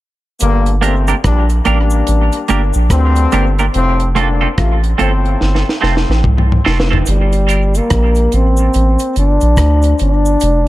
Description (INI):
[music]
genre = dub reggae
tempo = 72 BPM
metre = 4/4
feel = swing 62% on 16ths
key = G minor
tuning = A4 = 439 Hz
[part]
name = brilliant trombone section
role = second line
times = 0.4-5.8 s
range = G2 to F4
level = -19 LUFS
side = left 4 dB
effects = high-pass filter, dub echo
[part]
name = soft dub sub bass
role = bass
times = 0.4-10.7 s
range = F1 to D2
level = -13 LUFS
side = equal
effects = none
[part]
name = deep reggae drum kit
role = drums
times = 0.4-10.6 s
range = hi-hat, kick drum, rim click, snare drum, toms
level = -18 LUFS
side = equal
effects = none
[part]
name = cabasa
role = percussion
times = 0.4-10.6 s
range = none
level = -29 LUFS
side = right 1 dB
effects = high-pass filter on perc
[part]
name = semi-hollow electric guitar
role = accompaniment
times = 0.8-7.6 s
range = A3 to Bb4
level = -20 LUFS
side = right 5 dB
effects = lush chorus, high-pass filter, dub echo
[part]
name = dark trombone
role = melody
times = 7.1-10.7 s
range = G3 to D4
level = -15 LUFS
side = left 1 dB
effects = dub echo
[sound]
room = light reverb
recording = echo-heavy mix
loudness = -11 LUFS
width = side -16 dB against mid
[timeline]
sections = 0.4-7.1 A section; 7.1-10.7 B section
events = part muted 3.7-7.1; filter sweep 3.7-10.4; drum fill 5.4-7.1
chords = 0.4 Gm; 3.7 F; 7.1 Gm